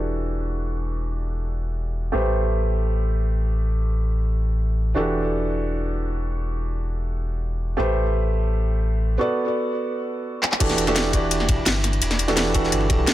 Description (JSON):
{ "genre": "liquid drum and bass", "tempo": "free time", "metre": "none", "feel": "none", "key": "E minor", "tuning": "A4 = 440 Hz", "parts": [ { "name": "felt-muted upright piano", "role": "accompaniment", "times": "0.0-13.1 s", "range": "E3 to D5", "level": "-25 LUFS", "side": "right 1 dB", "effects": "ping-pong delay" }, { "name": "warm sub bass", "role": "bass", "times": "0.0-13.1 s", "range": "E1 to B1", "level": "-23 LUFS", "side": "equal", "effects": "none" }, { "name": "drum and bass drum kit", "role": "drums", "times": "10.4-13.1 s", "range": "crash cymbal, handclaps, hi-hat, snare drum", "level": "-22 LUFS", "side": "left 1 dB", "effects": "none" }, { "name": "crunchy breakbeat drum kit", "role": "drums", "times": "10.6-13.1 s", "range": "ride cymbal, snare drum", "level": "-28 LUFS", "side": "equal", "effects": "high-pass filter on cymbals, high-pass filter on snare, high-pass filter on room" }, { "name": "electronic kick drum", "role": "drums", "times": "10.6-13.0 s", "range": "none", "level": "-22 LUFS", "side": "equal", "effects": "none" } ], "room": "small room ambience", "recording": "low-pass filter", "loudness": "-20 LUFS", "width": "side -14 dB against mid", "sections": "0.0-10.6 A section; 10.6-13.1 B section", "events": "filter sweep 0.0-10.6; drum fill 10.4; drop 10.6-13.1", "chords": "0.0 Em11; 2.1 Am9; 5.0 Em11; 7.8 Am9; 9.2 Bm7; 10.6 Em11" }